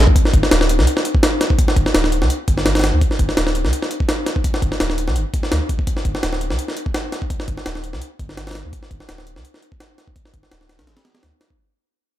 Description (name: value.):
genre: drum and bass, jungle.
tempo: 168 BPM.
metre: 4/4.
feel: swing 54% on 16ths.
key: unclear.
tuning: A4 = 444 Hz.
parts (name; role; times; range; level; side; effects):
soft dub sub bass; bass; 0.0-11.3 s; D1 to D2; -20 LUFS; equal; tube saturation.
jungle sampler-style drum kit; drums; 0.1-11.6 s; hi-hat, kick drum, snare drum; -17 LUFS; equal; none.
room: little or no reverb.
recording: none.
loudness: -16 LUFS.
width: side -13 dB against mid.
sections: 0.2-11.6 A section.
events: fade-out 0.2-11.6.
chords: none.